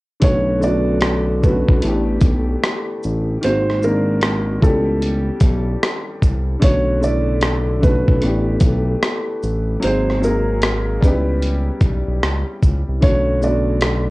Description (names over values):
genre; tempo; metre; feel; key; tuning
lo-fi hip hop; 75 BPM; 4/4; swing 62% on 16ths; B minor; A4 = 440 Hz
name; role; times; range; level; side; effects
felt-muted upright piano; melody; 0.2-14.1 s; A4 to D5; -23 LUFS; right 2 dB; low-pass filter
clear upright piano; accompaniment; 0.2-14.1 s; C#3 to G#4; -22 LUFS; left 1 dB; cassette tape, low-pass filter
smooth synth bass; bass; 0.2-14.1 s; G#1 to C#2; -20 LUFS; equal; transformer saturation
boom bap sampler-style drum kit; drums; 0.2-14.1 s; hi-hat, kick drum, rim click, shaker; -16 LUFS; equal; none
room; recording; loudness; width
light reverb; worn, warbling old tape, cassette tape, warbly pitch drift; -15 LUFS; side -21 dB against mid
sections
0.2-14.1 A section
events
none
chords
0.2 Bm9; 1.8 A9sus4; 3.4 G#7; 4.6 C#m7b5; 6.6 Bm9; 8.2 A9sus4; 9.8 G#7; 11.0 C#m7b5; 13.0 Bm9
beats
| 0.22 1.02 1.82 2.62 | 3.42 4.22 5.02 5.82 | 6.62 7.42 8.22 9.02 | 9.82 10.62 11.42 12.22 | 13.02 13.82